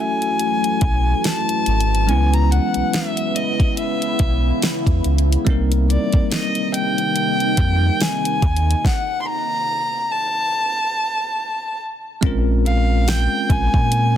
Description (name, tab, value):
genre	contemporary R&B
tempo	71 BPM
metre	4/4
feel	swing 58% on 16ths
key	unclear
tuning	A4 = 441 Hz
part	dark fiddle	melody	0.0-14.2 s	D5 to C6	-22 LUFS	left 1 dB	ping-pong delay
part	bell-like tine electric piano	accompaniment	0.0-14.2 s	G3 to Cb5	-24 LUFS	left 1 dB	fast stereo tremolo
part	deep dark ambient pad	sustained chords	0.0-14.2 s	C3 to Gb4	-26 LUFS	equal	chorus, built-in reverb, sidechain pumping
part	smooth R&B drum kit	drums	0.2-14.1 s	hi-hat, kick drum, snare drum	-20 LUFS	equal	soft clipping on snare
part	sub bass with octave	bass	0.8-14.2 s	Ab1 to Bb2	-18 LUFS	equal	none
room	little or no reverb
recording	dense, heavily limited modern master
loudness	-16 LUFS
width	side -10 dB against mid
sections	0.0-12.2 A section; 12.2-14.2 B section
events	stop 8.8-12.2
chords	0.0 Gbm9; 2.1 Dbm7; 5.5 Cm7; 8.4 Ebm9; 10.5 N.C.; 12.2 Bbm9